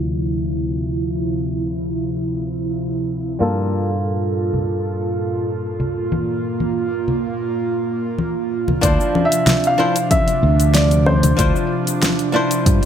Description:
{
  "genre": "sunset chillout",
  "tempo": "94 BPM",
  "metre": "4/4",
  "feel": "straight",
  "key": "D minor",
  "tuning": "A4 = 440 Hz",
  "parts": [
    { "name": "flamenco guitar", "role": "accompaniment", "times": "0.0-12.9 s", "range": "F3 to C5", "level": "-23 LUFS", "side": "moving between left 5 dB and right 3 dB", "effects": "auto-pan, low-pass filter, tape echo" },
    { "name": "airy breathy pad", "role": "sustained chords", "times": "0.0-12.9 s", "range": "Bb2 to A4", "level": "-22 LUFS", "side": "right 2 dB", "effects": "chorus" },
    { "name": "fretless electric bass", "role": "bass", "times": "0.0-12.8 s", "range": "D2 to G2", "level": "-21 LUFS", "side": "equal", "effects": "none" },
    { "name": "congas", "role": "percussion", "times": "4.5-11.4 s", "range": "none", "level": "-22 LUFS", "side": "left 2 dB", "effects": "none" },
    { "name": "dark grand piano", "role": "melody", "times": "8.8-11.7 s", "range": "C5 to F5", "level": "-20 LUFS", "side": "equal", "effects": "tape echo" },
    { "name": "deep house drum kit", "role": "drums", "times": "8.8-12.9 s", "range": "cabasa, congas, hi-hat, snare drum", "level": "-21 LUFS", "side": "left 2 dB", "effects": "overdrive" },
    { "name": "electronic kick drum", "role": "drums", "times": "8.8-12.8 s", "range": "none", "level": "-18 LUFS", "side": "equal", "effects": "overdrive" }
  ],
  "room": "moderate concert hall reverb, RT60 2.1 s",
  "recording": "low-pass filter",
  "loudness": "-17 LUFS",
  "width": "side -9 dB against mid",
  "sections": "0.0-8.8 A section; 8.8-12.9 B section",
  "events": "filter sweep on nylon-string guitar 0.0-8.8; filter sweep on analog synth pad 0.0-8.8; filter sweep 0.0-8.8",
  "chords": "0.0 Dm9; 3.4 Gm9; 8.8 Dm9"
}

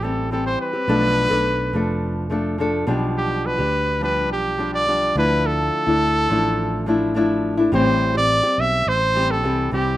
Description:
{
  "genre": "acoustic pop",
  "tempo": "105 BPM",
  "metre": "4/4",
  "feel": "straight",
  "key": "A minor",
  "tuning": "A4 = 441 Hz",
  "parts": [
    { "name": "clear trumpet", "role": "melody", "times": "0.0-10.0 s", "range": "G4 to E5", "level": "-20 LUFS", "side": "right 1 dB", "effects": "none" },
    { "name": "nylon-string guitar", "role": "accompaniment", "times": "0.0-10.0 s", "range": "A2 to A4", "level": "-22 LUFS", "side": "left 2 dB", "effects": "none" },
    { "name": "sustaining fretless electric bass", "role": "bass", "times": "0.0-10.0 s", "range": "F1 to D2", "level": "-25 LUFS", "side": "right 1 dB", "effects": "none" }
  ],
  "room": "moderate small room ambience, RT60 0.5 s",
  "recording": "rough home demo mix",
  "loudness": "-17 LUFS",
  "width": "side -14 dB against mid",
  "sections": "0.0-7.7 A section; 7.7-10.0 B section",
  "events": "none",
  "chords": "0.0 Am7; 0.9 Bm7b5; 2.9 G7/B; 5.2 Dmadd9; 7.7 Am7"
}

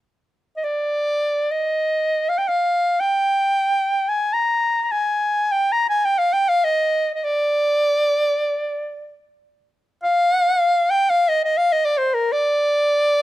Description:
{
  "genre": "caucasian folk, Caucasian lament",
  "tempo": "free time",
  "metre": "none",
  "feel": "none",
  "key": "unclear",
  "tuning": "A4 = 441 Hz",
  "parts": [
    { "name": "warm soprano saxophone", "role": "solo", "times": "0.6-13.2 s", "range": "Bb4 to Bb5", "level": "-17 LUFS", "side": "equal", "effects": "none" }
  ],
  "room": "little or no reverb",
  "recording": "close, detailed microphones",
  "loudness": "-17 LUFS",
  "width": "side -15 dB against mid",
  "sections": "0.1-13.2 A section",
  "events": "slowing down 9.6-13.2",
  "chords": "none"
}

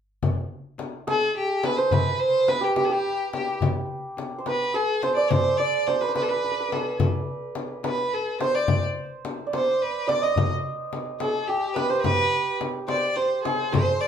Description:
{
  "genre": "Persian modal ensemble",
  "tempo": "71 BPM (dotted quarters)",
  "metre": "6/8",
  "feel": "straight",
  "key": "C avaz esfahan",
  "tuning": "A4 = 439 Hz",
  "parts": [
    { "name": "frame drum", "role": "percussion", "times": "0.2-13.9 s", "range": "none", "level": "-29 LUFS", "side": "left 4 dB", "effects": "none" },
    { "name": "tombak", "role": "percussion", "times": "0.2-14.1 s", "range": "none", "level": "-28 LUFS", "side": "left 2 dB", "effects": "none" },
    { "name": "rich violin", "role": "melody", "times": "1.1-14.1 s", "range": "G4 to Eb5", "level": "-24 LUFS", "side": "equal", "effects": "none" },
    { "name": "santur", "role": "second line", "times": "1.1-14.1 s", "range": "G4 to Eb5", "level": "-27 LUFS", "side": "right 3 dB", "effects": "none" }
  ],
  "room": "wet studio reverb, RT60 0.6 s",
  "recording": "band playing live in one room, faint mains hum",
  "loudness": "-22 LUFS",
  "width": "side -8 dB against mid",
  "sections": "0.2-13.7 A section",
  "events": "none",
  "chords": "none"
}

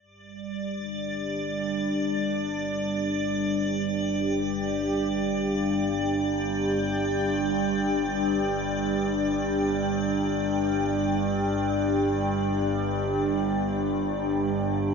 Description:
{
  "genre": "dark ambient drone",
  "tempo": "free time",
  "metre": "none",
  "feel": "none",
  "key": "unclear",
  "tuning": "A4 = 444 Hz",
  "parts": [
    { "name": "sweeping resonant pad", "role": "sustained chords", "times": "0.0-14.9 s", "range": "G3 to G5", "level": "-25 LUFS", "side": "equal", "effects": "chorus, shimmer reverb" },
    { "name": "overtone-sweeping drone", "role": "drone", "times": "1.0-14.9 s", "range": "G1 to G2", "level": "-32 LUFS", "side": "equal", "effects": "chorus, built-in reverb, phaser" },
    { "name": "icy glass pad", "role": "texture", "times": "0.2-14.9 s", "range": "D5", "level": "-34 LUFS", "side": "equal", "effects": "chorus, built-in reverb, shimmer reverb" }
  ],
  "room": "wet cathedral reverb, RT60 6.5 s",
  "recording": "none",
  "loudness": "-24 LUFS",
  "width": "side -5 dB against mid",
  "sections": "0.0-14.9 A section",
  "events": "fade-in on synth drone 0.0-14.9",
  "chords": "0.0 G5"
}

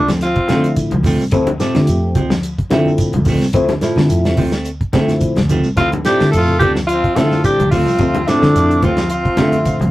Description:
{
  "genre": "afrobeat",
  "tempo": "108 BPM",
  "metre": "4/4",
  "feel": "swing 55% on 16ths",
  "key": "D minor",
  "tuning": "A4 = 440 Hz",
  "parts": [
    { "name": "raspy alto saxophone", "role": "melody", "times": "0.0-0.7, 5.8-9.9 s", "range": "D4 to A4", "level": "-16 LUFS", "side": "equal", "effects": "none" },
    { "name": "bright trumpet", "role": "second line", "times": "0.0-0.7, 5.8-9.9 s", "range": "A3 to F4", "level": "-26 LUFS", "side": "right 2 dB", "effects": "none" },
    { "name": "muted trombone section", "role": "second line", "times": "0.0-0.7, 5.8-9.9 s", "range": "D3 to A3", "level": "-24 LUFS", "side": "equal", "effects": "none" },
    { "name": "semi-hollow electric guitar", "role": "stabs", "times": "0.0-9.6 s", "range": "F3 to C4", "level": "-21 LUFS", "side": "right 2 dB", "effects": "none" },
    { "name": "fingered electric bass", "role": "bass", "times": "0.0-9.9 s", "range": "C2 to D3", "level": "-18 LUFS", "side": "equal", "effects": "none" },
    { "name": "clean electric guitar", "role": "arpeggios", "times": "0.1-9.9 s", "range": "C3 to F3", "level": "-25 LUFS", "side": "left 2 dB", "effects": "spring reverb, slapback echo" },
    { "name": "warm soul drum kit", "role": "drums", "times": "0.1-9.9 s", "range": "hi-hat, kick drum, snare drum", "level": "-20 LUFS", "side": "equal", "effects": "none" },
    { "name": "congas", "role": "percussion", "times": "0.1-9.9 s", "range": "none", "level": "-23 LUFS", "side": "equal", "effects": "none" },
    { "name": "shekere", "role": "percussion", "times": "0.1-9.8 s", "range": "none", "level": "-28 LUFS", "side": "right 1 dB", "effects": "none" },
    { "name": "barky tine electric piano", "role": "accompaniment", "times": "0.5-9.8 s", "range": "F3 to E5", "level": "-20 LUFS", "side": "left 2 dB", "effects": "phaser" }
  ],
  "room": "wet booth ambience, RT60 0.2 s",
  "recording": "rough rehearsal-room recording",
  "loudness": "-12 LUFS",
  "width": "side -16 dB against mid",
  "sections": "0.0-9.9 A section",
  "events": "none",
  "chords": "0.0 Dm7"
}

